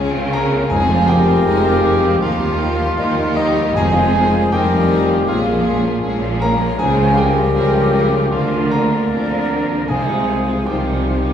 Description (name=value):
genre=cinematic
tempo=79 BPM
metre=4/4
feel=rubato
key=F minor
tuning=A4 = 440 Hz
part: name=warm symphonic violin section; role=melody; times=0.0-11.3 s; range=D4 to Ab4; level=-27 LUFS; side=left 3 dB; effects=none
part: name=warm symphonic violin section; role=second line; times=0.0-11.3 s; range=Bb3 to G4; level=-29 LUFS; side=left 1 dB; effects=none
part: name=rich symphonic viola section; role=accompaniment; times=0.0-11.3 s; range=Eb3 to Db4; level=-28 LUFS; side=equal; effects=none
part: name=warm concert grand piano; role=accompaniment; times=0.0-11.3 s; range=F1 to Bb5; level=-20 LUFS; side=equal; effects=none
part: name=warm studio double bass section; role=bass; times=0.0-11.3 s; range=F1 to Eb2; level=-23 LUFS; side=right 2 dB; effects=none
part: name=warm symphonic cello section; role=bass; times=0.0-11.3 s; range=Eb2 to D3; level=-21 LUFS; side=right 1 dB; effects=none
part: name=dark cor anglais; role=second line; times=0.3-11.3 s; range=Eb4 to Bb4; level=-24 LUFS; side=right 2 dB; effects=none
part: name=mellow hollow concert flute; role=second line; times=0.3-11.3 s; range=G4 to D5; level=-25 LUFS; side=left 1 dB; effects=none
part: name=dark French horn section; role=sustained chords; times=0.3-11.3 s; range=Eb3 to G4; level=-22 LUFS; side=left 3 dB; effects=none
part: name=timpani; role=percussion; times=0.7-4.9, 9.9-11.0 s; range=F2 to C3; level=-26 LUFS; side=left 1 dB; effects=none
room=wet recital hall reverb, RT60 1.6 s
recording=recorded in a church or concert hall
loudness=-14 LUFS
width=side -9 dB against mid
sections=0.0-11.3 A section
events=none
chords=0.0 Dbmaj7; 0.7 Fm7; 2.2 Ebadd9; 3.8 Fm7; 5.3 Bbm7; 6.8 Dbmaj7; 8.3 Bbadd9/D; 9.9 Fm7/C